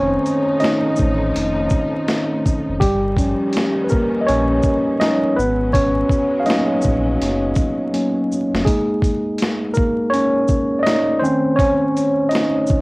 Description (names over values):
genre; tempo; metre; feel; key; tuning
lo-fi hip hop; 82 BPM; 4/4; swing 62% on 16ths; unclear; A4 = 440 Hz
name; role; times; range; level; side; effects
tine electric piano; accompaniment; 0.0-12.8 s; Eb3 to E#5; -17 LUFS; equal; medium stereo tremolo, cassette tape
muted studio string section; sustained chords; 0.0-8.6 s; D#3 to Eb4; -29 LUFS; left 1 dB; none
sub bass with octave; bass; 0.0-8.7 s; F1 to A#1; -23 LUFS; equal; none
boom bap sampler-style drum kit; drums; 0.3-12.8 s; hi-hat, kick drum, shaker, snare drum; -21 LUFS; equal; none
room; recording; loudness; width
light reverb; home recording on cassette, vinyl crackle; -15 LUFS; side -24 dB against mid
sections
0.0-12.8 A section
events
tine electric piano solo 0.0-12.8; drum fill 7.9-8.7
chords
0.0 F7b13; 2.8 D#9/G; 5.4 G#9sus4; 8.7 G#sus24; 11.2 Adim/Eb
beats
0.61 1.34 2.08 | 2.81 3.54 4.27 5.00 | 5.74 6.47 7.20 7.93 | 8.66 9.39 10.12 10.86 | 11.59 12.32